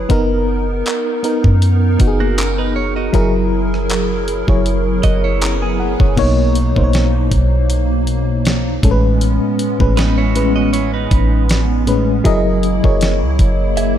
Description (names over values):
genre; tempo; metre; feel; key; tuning
contemporary R&B; 79 BPM; 4/4; swing 54% on 16ths; B major; A4 = 440 Hz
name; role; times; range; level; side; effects
FM electric piano with auto-pan; accompaniment; 0.0-14.0 s; A2 to A#5; -18 LUFS; left 1 dB; none
hollow soft pad; sustained chords; 0.0-14.0 s; B2 to A#4; -21 LUFS; right 1 dB; ensemble chorus, sidechain pumping
soft 808-style bass; bass; 0.0-14.0 s; F#1 to F#2; -17 LUFS; equal; none
dusty soul sampler-style drum kit; drums; 0.1-14.0 s; crash cymbal, handclaps, hi-hat, kick drum, rim click, snare drum; -18 LUFS; equal; none
direct-recorded clean electric guitar; arpeggios; 2.2-14.0 s; A#3 to E5; -24 LUFS; right 9 dB; phaser, diffuse ambient delay
swell; sound effects; 4.8-6.2 s; none; -30 LUFS; left 4 dB; none
room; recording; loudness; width
light reverb, digital ambience; none; -13 LUFS; side -10 dB against mid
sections
0.0-6.2 A section; 6.2-14.0 B section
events
swell 4.8-6.2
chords
0.1 Bmaj7/F#; 3.1 F#9; 6.2 Bmaj9; 8.8 Amaj9; 12.3 F#13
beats
| 0.10 0.86 1.62 2.38 | 3.14 3.90 4.66 5.42 | 6.18 6.93 7.70 8.45 | 9.21 9.97 10.73 11.49 | 12.25 13.01 13.77